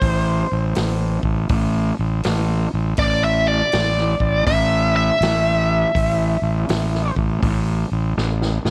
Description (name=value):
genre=blues rock power trio and southern rock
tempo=81 BPM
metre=4/4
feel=swing 64% on 8ths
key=unclear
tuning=A4 = 440 Hz
part: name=dark smooth lead guitar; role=melody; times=0.0-7.1 s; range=C5 to E5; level=-23 LUFS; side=equal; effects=wah, overdrive, slapback echo
part: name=fuzz fingered electric bass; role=bass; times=0.0-8.7 s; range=A1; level=-22 LUFS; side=equal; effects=overdrive
part: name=vintage drum kit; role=drums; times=0.0-8.7 s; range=hi-hat, kick drum, snare drum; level=-28 LUFS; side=equal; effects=none
room=small room ambience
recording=none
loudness=-19 LUFS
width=mono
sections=0.0-8.7 A section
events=lead electric guitar solo 0.0-8.7; drum fill 8.2-8.7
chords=0.0 A5